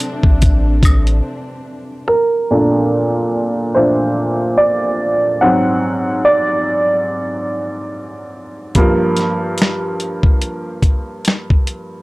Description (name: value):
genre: lo-fi hip hop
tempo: 72 BPM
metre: 4/4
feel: swing 56% on 16ths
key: unclear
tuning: A4 = 440 Hz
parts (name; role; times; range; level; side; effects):
- clear upright piano; accompaniment; 0.0-12.0 s; G2 to Gb5; -15 LUFS; right 1 dB; cassette tape, low-pass filter
- warm studio string section; sustained chords; 0.0-2.1 s; C3 to D4; -28 LUFS; left 2 dB; none
- dusty soul sampler-style drum kit; drums; 0.0-1.2, 8.7-11.9 s; hi-hat, kick drum, snare drum; -13 LUFS; equal; none
- warm sub bass; bass; 0.2-1.2 s; A1; -14 LUFS; equal; tube saturation
- maracas and woodblock; percussion; 0.4-1.1 s; none; -25 LUFS; left 1 dB; none
room: light reverb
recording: dry, gritty hardware recording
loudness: -13 LUFS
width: side -21 dB against mid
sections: 0.0-2.1 A section; 2.1-12.0 B section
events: upright piano solo 0.0-2.1, 2.1-12.0; break 1.3-2.1; filter sweep on upright piano 2.1-12.0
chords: 0.0 Bbmaj9; 5.4 Ab7; 8.8 Gm7